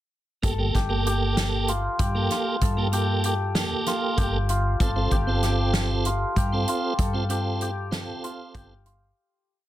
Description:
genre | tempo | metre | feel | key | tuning
progressive instrumental, band music in an uneven meter | 192 BPM (eighths) | 7/8 | straight | G minor | A4 = 439 Hz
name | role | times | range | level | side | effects
tonewheel organ | accompaniment | 0.4-8.7 s | Bb3 to A4 | -28 LUFS | right 4 dB | chorus vibrato
cimbalom | arpeggios | 0.4-9.7 s | F4 to A4 | -29 LUFS | left 3 dB | none
woody fretless electric bass | bass | 0.4-9.1 s | G1 to G2 | -26 LUFS | equal | none
natural country drum kit | drums | 0.4-9.0 s | hi-hat, kick drum, snare drum | -27 LUFS | equal | none
room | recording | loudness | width
light reverb | dense, heavily limited modern master | -22 LUFS | side -13 dB against mid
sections
0.4-9.2 groove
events
fade-out 7.0-9.2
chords
0.4 Gmadd9; 4.8 F/G

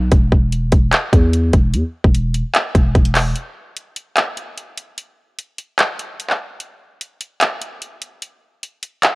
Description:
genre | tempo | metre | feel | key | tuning
hip hop, trap | 148 BPM | 4/4 | half-time | unclear | A4 = 439 Hz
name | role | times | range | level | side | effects
growling 808-style bass | bass | 0.0-3.3 s | E1 to E2 | -16 LUFS | equal | none
trap drum kit | drums | 0.1-9.1 s | handclaps, hi-hat, kick drum | -15 LUFS | equal | none
room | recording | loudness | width
little or no reverb | worn, warbling old tape, cassette tape, warbly pitch drift | -14 LUFS | side -24 dB against mid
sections
0.0-9.2 A section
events
break 3.4-9.2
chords
none

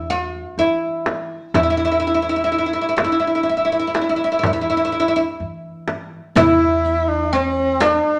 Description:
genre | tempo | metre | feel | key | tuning
Arabic maqam ensemble | 124 BPM (eighths) | 10/8 | straight | unclear | A4 = 440 Hz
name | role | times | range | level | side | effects
oud | melody | 0.0-8.2 s | C4+50c to F#4-50c | -20 LUFS | equal | none
upright bass | bass | 0.0-8.0 s | E2 to E3 | -33 LUFS | equal | none
frame drum | percussion | 1.1-8.0 s | none | -24 LUFS | equal | none
clear tenor saxophone | second line | 6.4-8.2 s | C#4-47c to E4 | -21 LUFS | equal | none
darbuka | percussion | 6.4-8.0 s | none | -34 LUFS | equal | none
riq | percussion | 6.4-8.0 s | none | -33 LUFS | equal | none
room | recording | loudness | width
moderate studio reverb, RT60 0.9 s | none | -19 LUFS | mono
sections
0.0-6.4 A section; 6.4-8.2 B section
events
none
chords
none

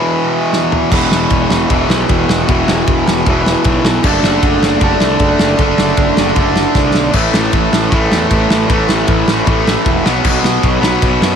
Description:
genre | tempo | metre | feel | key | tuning
punk rock | 155 BPM | 4/4 | straight | unclear | A4 = 440 Hz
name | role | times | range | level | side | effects
distorted electric guitar | riff | 0.0-11.4 s | E2 to D4 | -13 LUFS | equal | overdrive
loose indie drum kit | drums | 0.5-11.3 s | crash cymbal, kick drum, ride cymbal, snare drum, toms | -15 LUFS | equal | none
fuzz picked electric bass | bass | 0.9-11.4 s | E1 to F#2 | -18 LUFS | equal | overdrive
room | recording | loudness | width
little or no reverb | lossy compression artefacts | -10 LUFS | side -7 dB against mid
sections
0.9-11.4 A section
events
break 0.0-0.9; drum fill 0.5-0.9, 6.8-7.1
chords
0.0 E5; 4.0 D/F#; 7.1 A5; 10.0 B5

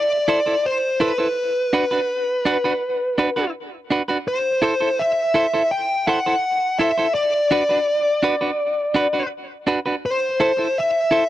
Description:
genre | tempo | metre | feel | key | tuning
reggae | 83 BPM | 4/4 | straight | A dorian | A4 = 441 Hz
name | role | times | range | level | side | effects
smooth overdriven lead guitar | melody | 0.0-11.3 s | B4 to G5 | -19 LUFS | left 1 dB | tape echo
clean electric guitar | accompaniment | 0.3-11.2 s | D4 to C5 | -22 LUFS | right 2 dB | tape echo
room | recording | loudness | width
light reverb | dry, close 1970s-style studio recording | -18 LUFS | side -14 dB against mid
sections
0.0-11.3 A section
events
none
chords
0.0 Am; 1.4 Bm; 4.3 Am; 7.2 Bm; 10.0 Am

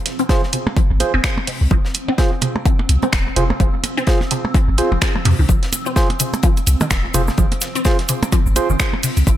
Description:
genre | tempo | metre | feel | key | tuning
minimal techno | 127 BPM | 4/4 | swing 58% on 16ths | F minor | A4 = 440 Hz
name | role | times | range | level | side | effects
swarming drone | texture | 0.0-9.4 s | C4 | -30 LUFS | right 1 dB | built-in reverb, lush chorus, sidechain pumping
deep reggae drum kit | drums | 0.1-9.4 s | hi-hat, snare drum | -31 LUFS | left 3 dB | high-pass filter on hats, high-pass filter on snare, high-pass filter on room
punchy analog drum machine | drums | 0.1-9.2 s | finger snaps, hi-hat | -22 LUFS | right 2 dB | none
resonant blip pluck | riff | 0.2-9.3 s | C3 to C4 | -24 LUFS | equal | phaser, ensemble chorus, sidechain pumping, analog delay
percussive organ stab | stabs | 0.3-8.7 s | F4 to C5 | -24 LUFS | right 3 dB | chorus, analog delay
electronic kick drum | drums | 0.3-9.4 s | none | -17 LUFS | equal | none
percussion blips | percussion | 0.3-9.4 s | none | -25 LUFS | right 2 dB | analog delay
punchy sub bass | bass | 0.9-9.4 s | Eb1 to F2 | -17 LUFS | equal | sidechain pumping
cabasa | percussion | 5.5-9.4 s | none | -26 LUFS | left 2 dB | none
room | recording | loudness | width
light reverb | none | -15 LUFS | side -12 dB against mid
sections
0.0-9.4 A section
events
none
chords
0.0 Fm

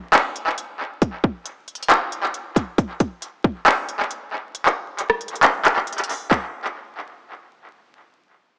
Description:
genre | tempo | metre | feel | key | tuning
hip hop | 136 BPM | 4/4 | half-time | none | none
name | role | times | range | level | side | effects
trap drum kit | drums | 0.1-6.4 s | handclaps, hi-hat, kick drum, rim click | -18 LUFS | equal | tape echo
room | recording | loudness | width
moderate plate reverb, RT60 2.3 s | echo-heavy mix, vinyl crackle, small speaker sound | -19 LUFS | side -28 dB against mid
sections
0.0-6.3 A section; 6.3-8.1 B section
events
kick muted 4.5-6.3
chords
none

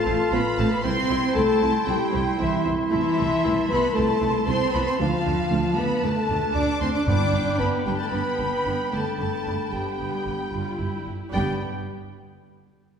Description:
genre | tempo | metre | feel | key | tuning
cinematic, heroic adventure film score | 115 BPM | 4/4 | straight | G mixolydian | A4 = 438 Hz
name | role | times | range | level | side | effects
rich studio violin section | melody | 0.0-11.6 s | E5 to D6 | -33 LUFS | left 2 dB | none
flute section | second line | 0.0-11.6 s | A5 to C6 | -34 LUFS | left 1 dB | none
mellow clarinet | second line | 0.0-11.6 s | D4 to D5 | -32 LUFS | left 1 dB | none
warm cor anglais | second line | 0.0-11.5 s | F5 to A5 | -35 LUFS | right 3 dB | none
warm symphonic violin section | second line | 0.0-11.6 s | E5 to D6 | -34 LUFS | left 2 dB | none
mellow French horn section | sustained chords | 0.0-11.5 s | E4 to D5 | -27 LUFS | left 3 dB | none
rich symphonic cello section | bass | 0.0-11.6 s | E3 to D4 | -28 LUFS | right 3 dB | none
rich studio viola section | accompaniment | 0.1-11.6 s | A3 to F4 | -33 LUFS | right 3 dB | none
rich symphonic double bass section | bass | 0.1-11.6 s | G1 to D2 | -29 LUFS | right 2 dB | none
timpani | percussion | 7.1-7.8, 11.3-11.6 s | G2 | -28 LUFS | right 2 dB | none
room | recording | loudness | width
wet scoring stage reverb, RT60 2.0 s | heard from further back in the room | -21 LUFS | side -7 dB against mid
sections
0.0-11.3 A section; 11.3-13.0 B section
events
none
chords
0.0 F/A; 0.8 C; 2.9 Am/C; 5.0 Dm; 7.1 G

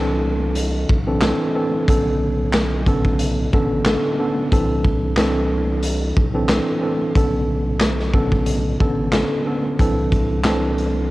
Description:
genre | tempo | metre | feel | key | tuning
hip hop, boom-bap hip-hop | 91 BPM | 4/4 | swing 55% on 16ths | B phrygian | A4 = 437 Hz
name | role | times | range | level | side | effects
mellow tine electric piano | accompaniment | 0.0-11.1 s | D3 to A4 | -20 LUFS | equal | medium stereo tremolo, high-pass filter, low-pass filter, cassette tape
saturated sub bass | bass | 0.0-11.1 s | A1 to C2 | -23 LUFS | equal | none
raw garage drum kit | drums | 0.6-10.9 s | handclaps, hi-hat, kick drum, snare drum | -20 LUFS | equal | cassette tape
room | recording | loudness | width
small room ambience | home recording on cassette | -17 LUFS | side -18 dB against mid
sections
0.0-11.1 A section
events
none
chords
0.0 C69; 1.9 Bm9; 4.5 C69; 7.2 Bm9; 9.8 C69

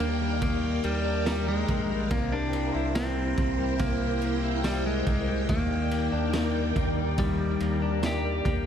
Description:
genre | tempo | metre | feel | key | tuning
dream pop | 71 BPM | 4/4 | straight | unclear | A4 = 442 Hz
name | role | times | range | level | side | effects
clean electric guitar | melody | 0.0-8.7 s | G3 to G4 | -30 LUFS | left 1 dB | spring reverb, ping-pong delay
phased string machine | sustained chords | 0.0-8.7 s | Eb3 to G5 | -32 LUFS | right 1 dB | ensemble chorus, phaser
direct-recorded clean electric guitar | arpeggios | 0.0-8.7 s | C3 to E4 | -33 LUFS | left 6 dB | lush chorus, ping-pong delay
round analog bass | bass | 0.0-8.7 s | Bb1 to Eb2 | -31 LUFS | right 1 dB | none
raw garage drum kit | drums | 0.0-8.6 s | kick drum, ride cymbal, snare drum, tambourine | -32 LUFS | right 1 dB | none
twinkling granular texture | texture | 0.9-2.5 s | Bb4 | -44 LUFS | right 3 dB | none
room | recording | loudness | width
light reverb, studio ambience | none | -24 LUFS | side -8 dB against mid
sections
0.0-8.7 A section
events
none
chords
0.0 Ebmaj7; 2.1 C7; 5.5 Ebmaj7

